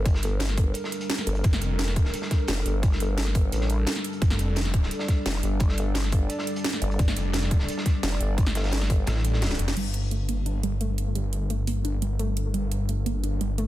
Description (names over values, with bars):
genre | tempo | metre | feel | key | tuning
dark technical drum and bass | 173 BPM | 4/4 | straight | G minor | A4 = 440 Hz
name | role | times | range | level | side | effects
dark analog pad | sustained chords | 0.0-13.7 s | G3 to D5 | -33 LUFS | equal | chorus, sidechain pumping
vowel-sweep wobble bass | bass | 0.0-9.1 s | F1 to A1 | -26 LUFS | equal | chorus
crunchy breakbeat drum kit | drums | 0.1-9.8 s | hi-hat, snare drum | -37 LUFS | equal | high-pass filter on hats, studio reverb, high-pass filter on snare, high-pass filter on room
drum and bass drum kit | drums | 0.1-13.7 s | crash cymbal, hi-hat, snare drum | -31 LUFS | right 1 dB | overdrive, studio reverb
electronic kick drum | drums | 0.1-9.0 s | none | -22 LUFS | equal | overdrive, studio reverb
snarling distorted saw bass | bass | 1.4-2.1, 4.2-4.9, 7.0-13.7 s | F1 to A1 | -26 LUFS | equal | distortion, tube saturation, sidechain pumping
warbly dusty pluck | arpeggios | 9.8-13.7 s | G3 to D4 | -32 LUFS | right 2 dB | chorus, sidechain pumping, ping-pong delay
room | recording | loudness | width
digital ambience | dense, heavily limited modern master | -23 LUFS | side -14 dB against mid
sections
0.0-9.8 A section; 9.8-13.7 B section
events
drop 0.0-9.8; kick drops out 9.1-9.8; drum fill 9.4-9.8; band accent 9.7; filter sweep on synth arpeggio sound 9.8-13.7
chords
0.0 Gm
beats
| 0.06 0.40 0.75 1.10 | 1.44 1.79 2.14 2.48 | 2.83 3.18 3.52 3.87 | 4.22 4.56 4.91 5.26 | 5.61 5.95 6.30 6.64 | 6.99 7.34 7.69 8.03 | 8.38 8.73 9.07 9.42 | 9.77 10.11 10.46 10.81 | 11.15 11.50 11.85 12.19 | 12.54 12.89 13.23 13.58